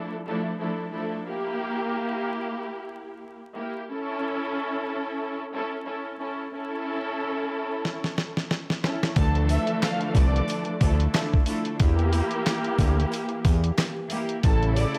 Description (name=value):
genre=hip hop, boom-bap hip-hop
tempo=91 BPM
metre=4/4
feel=swing 58% on 16ths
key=D harmonic minor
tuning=A4 = 442 Hz
part: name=rich studio string section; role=accompaniment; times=0.0-15.0 s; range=C#3 to A4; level=-31 LUFS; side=equal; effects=high-pass filter, low-pass filter
part: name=lo-fi sampler-style drum kit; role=drums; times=7.8-15.0 s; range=handclaps, hi-hat, kick drum, snare drum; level=-26 LUFS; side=equal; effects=none
part: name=warm studio violin section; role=melody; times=9.2-15.0 s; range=A4 to F6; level=-34 LUFS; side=equal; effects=high-pass filter, low-pass filter, digital delay
part: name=hollow soft pad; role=sustained chords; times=9.2-15.0 s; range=C#3 to G4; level=-38 LUFS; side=equal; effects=chorus, high-pass filter, low-pass filter
part: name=fat analog bass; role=bass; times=9.2-14.9 s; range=A1 to E2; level=-25 LUFS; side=equal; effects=none
part: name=sleigh bells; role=percussion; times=9.2-14.9 s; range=none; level=-46 LUFS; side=equal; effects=none
room=light reverb, small room reverb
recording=vinyl crackle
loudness=-26 LUFS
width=mono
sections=0.0-9.2 A section; 9.2-15.0 B section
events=drum fill 7.8-9.2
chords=0.0 Dmadd9; 1.3 Edim; 3.9 A; 9.2 Dmadd9; 11.8 Edim; 14.4 A